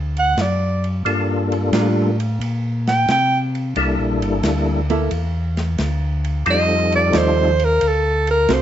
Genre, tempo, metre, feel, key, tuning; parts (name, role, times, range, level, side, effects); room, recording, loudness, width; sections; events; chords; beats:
soul jazz organ trio; 89 BPM; 4/4; swing 69% on 8ths; A4 = 440 Hz
mellow tonewheel organ; bass; 0.0-8.6 s; G1 to C3; -20 LUFS; equal; slow rotary speaker
warm alto saxophone; melody; 0.2-8.6 s; A4 to G5; -17 LUFS; right 2 dB
warm soul drum kit; drums; 0.2-8.6 s; hi-hat, ride cymbal, snare drum; -28 LUFS; right 1 dB
percussive tonewheel organ; melody; 1.1-7.5 s; G3 to A4; -20 LUFS; left 2 dB; slow rotary speaker, chorus vibrato
archtop guitar, miked and amplified; accompaniment; 1.7-8.6 s; D3 to D5; -21 LUFS; right 4 dB
light reverb; nothing above 7.8 kHz; -16 LUFS; side -11 dB against mid
0.0-8.6 A section
alto saxophone solo 0.0-8.6
0.0 D; 1.1 Gm7; 3.8 C13; 6.5 F13; 7.8 D7
0.38 | 1.06 1.73 2.41 3.09 | 3.76 4.44 5.12 5.79 | 6.47 7.14 7.82 8.49